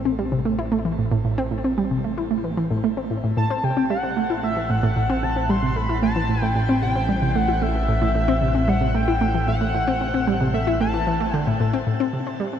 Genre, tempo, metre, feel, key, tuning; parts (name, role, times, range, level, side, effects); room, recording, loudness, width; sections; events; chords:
ambient, sequencer-driven space music; 113 BPM; 4/4; straight; A dorian; A4 = 442 Hz
analog pluck; riff; 0.0-12.6 s; A2 to E4; -22 LUFS; equal; chorus, analog delay
fat analog bass; bass; 0.0-11.8 s; A1; -26 LUFS; equal
pulse-width lead; melody; 3.4-11.6 s; E5 to C6; -25 LUFS; left 1 dB; chorus, analog delay
moderate shimmer reverb, RT60 7.7 s; cassette tape; -19 LUFS; side -9 dB against mid
0.0-11.9 A section
fade-in on analog synth bass 0.0-11.9
0.0 Am; 11.9 N.C.